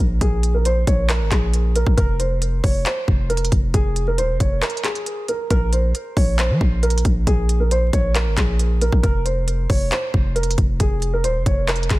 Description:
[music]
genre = hip hop, trap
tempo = 136 BPM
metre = 4/4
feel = half-time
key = Bb minor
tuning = A4 = 439 Hz
[part]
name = hard-hitting 808-style bass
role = bass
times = 0.0-12.0 s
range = Eb1 to F3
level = -20 LUFS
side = equal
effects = none
[part]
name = dark concert grand piano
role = melody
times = 0.2-12.0 s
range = Ab4 to Db5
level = -24 LUFS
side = right 1 dB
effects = digital delay
[part]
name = trap drum kit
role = drums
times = 0.2-12.0 s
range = handclaps, hi-hat, kick drum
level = -20 LUFS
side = equal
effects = none
[sound]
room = little or no reverb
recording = dense, heavily limited modern master, vinyl crackle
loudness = -17 LUFS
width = side -18 dB against mid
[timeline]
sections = 0.0-5.5 A section; 5.5-12.0 A section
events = break 4.6-5.5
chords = 0.0 Bb5; 2.0 Fm; 5.5 Bb5; 9.0 F5

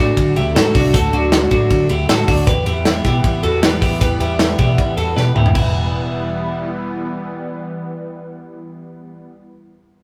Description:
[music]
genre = jangly indie pop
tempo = 156 BPM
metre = 4/4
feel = straight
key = E minor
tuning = A4 = 442 Hz
[part]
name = lush unison pad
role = sustained chords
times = 0.0-9.3 s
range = D3 to B3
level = -27 LUFS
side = equal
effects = chorus, phaser
[part]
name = twelve-string electric guitar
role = arpeggios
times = 0.0-6.7 s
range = D4 to B4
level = -21 LUFS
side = equal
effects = none
[part]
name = vintage muted fingered electric bass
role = bass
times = 0.0-9.3 s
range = E1 to E3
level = -22 LUFS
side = equal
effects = none
[part]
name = modern studio drum kit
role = drums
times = 0.2-5.6 s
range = crash cymbal, hi-hat, kick drum, ride cymbal, snare drum, toms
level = -19 LUFS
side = equal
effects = none
[sound]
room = wet small room reverb, RT60 0.6 s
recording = rough rehearsal-room recording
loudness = -16 LUFS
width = mono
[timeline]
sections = 0.0-5.6 A section; 5.6-8.6 B section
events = drum fill 5.2-5.6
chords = 0.0 D; 2.5 Em

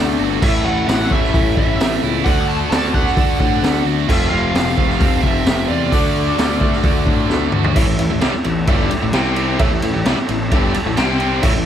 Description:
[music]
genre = classic rock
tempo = 131 BPM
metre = 4/4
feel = straight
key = unclear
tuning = A4 = 440 Hz
[part]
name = warm upright piano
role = accompaniment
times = 0.0-11.6 s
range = C4 to G5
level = -28 LUFS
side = right 6 dB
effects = none
[part]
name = bright tonewheel organ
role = sustained chords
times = 0.0-11.7 s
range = G3 to C5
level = -30 LUFS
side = equal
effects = none
[part]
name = crunchy overdriven guitar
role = riff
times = 0.0-11.7 s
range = F2 to F#4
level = -22 LUFS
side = left 11 dB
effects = none
[part]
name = tight distorted guitar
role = riff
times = 0.0-11.7 s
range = G2 to F#4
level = -23 LUFS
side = right 13 dB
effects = distortion
[part]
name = fuzz picked electric bass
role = bass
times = 0.0-11.7 s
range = F1 to D3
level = -22 LUFS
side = equal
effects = overdrive
[part]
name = lead guitar through a small cranked amp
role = melody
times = 0.4-7.3 s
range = D5 to A5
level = -23 LUFS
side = right 3 dB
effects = wah, overdrive
[part]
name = raw garage drum kit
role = drums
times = 0.4-11.5 s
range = crash cymbal, hi-hat, kick drum, ride cymbal, snare drum, toms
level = -18 LUFS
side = equal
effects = none
[sound]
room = light reverb, small room ambience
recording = none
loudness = -14 LUFS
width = side -9 dB against mid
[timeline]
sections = 0.0-7.8 A section; 7.8-11.7 B section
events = drum fill 7.3-7.8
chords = 0.4 A; 2.3 D; 4.1 F; 5.9 D; 7.8 A; 9.1 C5; 9.6 A; 11.0 C5

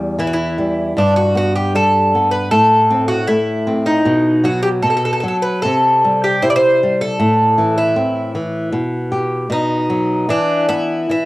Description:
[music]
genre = fado-style ballad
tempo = 77 BPM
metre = 2/4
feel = rubato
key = E minor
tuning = A4 = 440 Hz
[part]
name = flamenco guitar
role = accompaniment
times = 0.0-11.3 s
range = E2 to G4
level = -17 LUFS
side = equal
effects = cassette tape
[part]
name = Irish bouzouki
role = melody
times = 0.2-11.3 s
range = D4 to D5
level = -15 LUFS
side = equal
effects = cassette tape
[sound]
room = moderate small room reverb, RT60 0.5 s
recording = home recording on cassette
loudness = -13 LUFS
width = side -18 dB against mid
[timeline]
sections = 0.0-11.3 A section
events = none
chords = 0.0 Em; 1.0 G; 2.5 Am; 4.0 B5; 5.6 C; 7.2 Am; 8.7 G/B; 9.5 B; 10.3 E5

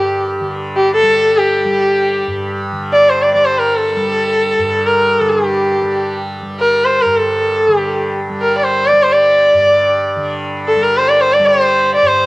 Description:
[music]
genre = indian classical, Hindustani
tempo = free time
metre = none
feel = none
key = G raga kafi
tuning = A4 = 440 Hz
[part]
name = rich sarangi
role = melody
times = 0.0-12.3 s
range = G4 to D5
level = -11 LUFS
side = equal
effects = cassette tape
[part]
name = tanpura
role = drone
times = 0.0-12.3 s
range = G2 to G3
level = -22 LUFS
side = right 1 dB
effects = cassette tape
[sound]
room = moderate spring reverb, RT60 1.6 s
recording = home recording on cassette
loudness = -11 LUFS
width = side -21 dB against mid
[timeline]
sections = 0.0-2.7 A section; 2.7-12.3 A section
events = none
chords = none

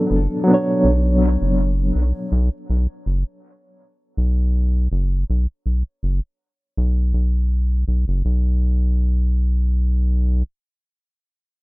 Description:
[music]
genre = trip hop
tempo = 81 BPM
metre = 4/4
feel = swing 54% on 16ths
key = unclear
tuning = A4 = 440 Hz
[part]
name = reed electric piano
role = accompaniment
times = 0.0-2.3 s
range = F#3 to C#5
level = -18 LUFS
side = equal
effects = fast tremolo, tape echo
[part]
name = round analog bass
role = bass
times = 0.1-10.4 s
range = F#1 to B1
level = -17 LUFS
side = equal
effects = none
[sound]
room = little or no reverb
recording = rough home demo mix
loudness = -17 LUFS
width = side -22 dB against mid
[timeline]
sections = 0.0-8.2 A section; 8.2-11.2 B section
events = none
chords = 0.0 Bm7; 2.3 F#sus4; 8.2 N.C.

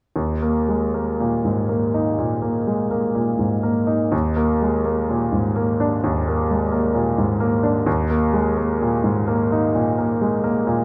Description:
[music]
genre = classical, romantic nocturne for solo piano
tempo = 56-67 BPM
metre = 4/4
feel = rubato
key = unclear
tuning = A4 = 440 Hz
[part]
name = clear grand piano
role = solo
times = 0.2-10.8 s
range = Eb2 to Eb4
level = -20 LUFS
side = equal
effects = none
[sound]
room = wet recital hall reverb, RT60 1.5 s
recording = none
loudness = -21 LUFS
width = mono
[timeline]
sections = 0.2-10.8 A section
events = none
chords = 0.2 Eb5; 4.1 Bb7/Eb; 7.9 Eb5

